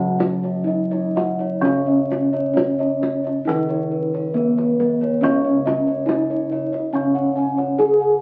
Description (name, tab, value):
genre	Javanese gamelan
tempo	61-70 BPM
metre	4/4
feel	straight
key	C# slendro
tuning	A4 = 440 Hz
part	gamelan-type bronze metallophone	melody	0.0-8.2 s	B3-40c to G#4+20c	-23 LUFS	equal	none
part	gamelan-type bronze metallophone	accompaniment	0.0-8.2 s	C#3 to F#3-20c	-29 LUFS	equal	none
part	gamelan-type bossed gongs	arpeggios	0.0-8.2 s	B4-40c to G#5+20c	-29 LUFS	equal	none
part	gamelan-type bronze metallophone	arpeggios	0.0-8.2 s	B4-40c to G#5+20c	-29 LUFS	equal	none
part	gamelan-type bossed gongs	bass	0.0-8.2 s	C#2 to D#4+40c	-30 LUFS	equal	none
part	kendang	percussion	0.2-8.0 s	none	-28 LUFS	equal	none
room	wet studio reverb, RT60 0.6 s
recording	very old 78 rpm record, vinyl crackle, lossy compression artefacts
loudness	-20 LUFS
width	mono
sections	0.0-5.2 A section; 5.2-8.2 B section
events	none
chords	none